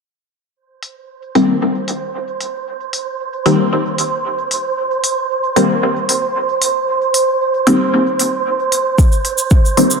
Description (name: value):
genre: dub techno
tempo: 114 BPM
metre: 4/4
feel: straight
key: C minor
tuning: A4 = 441 Hz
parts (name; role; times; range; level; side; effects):
- wind-like tuned noise texture; texture; 1.2-10.0 s; C5; -18 LUFS; right 4 dB; built-in reverb, sidechain pumping
- electronic hi-hat; drums; 0.8-9.9 s; none; -18 LUFS; equal; low-pass filter on hats
- filtered dub chord stab; stabs; 1.4-10.0 s; Eb3 to C4; -15 LUFS; left 2 dB; phaser, sidechain pumping, dub echo
- electronic kick drum; drums; 9.0-9.6 s; none; -11 LUFS; equal; none
- tube shaker; percussion; 9.0-10.0 s; none; -19 LUFS; right 3 dB; none
room: wet echo chamber reverb, RT60 1.6 s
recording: none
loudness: -14 LUFS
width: side -5 dB against mid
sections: 0.6-10.0 A section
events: none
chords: 0.6 Cm7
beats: | 0.56 1.09 1.61 2.14 | 2.67 3.19 3.72 4.25 | 4.77 5.30 5.83 6.35 | 6.88 7.41 7.93 8.46 | 8.98 9.51